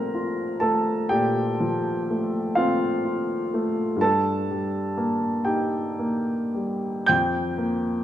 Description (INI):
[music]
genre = classical, romantic nocturne for solo piano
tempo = 41 BPM (dotted quarters)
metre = 12/8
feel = rubato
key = unclear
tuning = A4 = 440 Hz
[part]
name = warm upright piano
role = solo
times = 0.0-8.0 s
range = F2 to G6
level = -22 LUFS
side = equal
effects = none
[sound]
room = wet recital hall reverb, RT60 1.7 s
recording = none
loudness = -22 LUFS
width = side -11 dB against mid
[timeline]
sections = 0.0-8.0 A section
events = none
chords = 0.0 F/Bb; 4.0 Eb/G; 7.1 Bb5/F